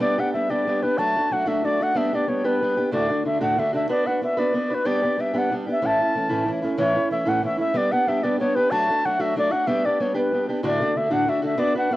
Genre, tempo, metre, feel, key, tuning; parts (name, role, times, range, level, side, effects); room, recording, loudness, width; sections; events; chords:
celtic folk, Celtic jig; 124 BPM (dotted quarters); 6/8; straight; A4 = 443 Hz
bright reedy baroque flute; melody; 0.0-12.0 s; B4 to A5; -22 LUFS; left 1 dB; cassette tape
fingerpicked acoustic archtop guitar; accompaniment; 0.0-12.0 s; D2 to B4; -23 LUFS; equal
moderate spring reverb, RT60 1.9 s, small room reverb; home recording on cassette; -20 LUFS; side -16 dB against mid
0.0-6.8 A section; 6.8-12.0 A section
0.0 G; 1.0 D/F#; 2.0 G; 2.9 D; 3.9 Bm; 4.9 G; 5.8 A; 7.8 G; 8.7 D/F#; 9.7 G; 10.6 D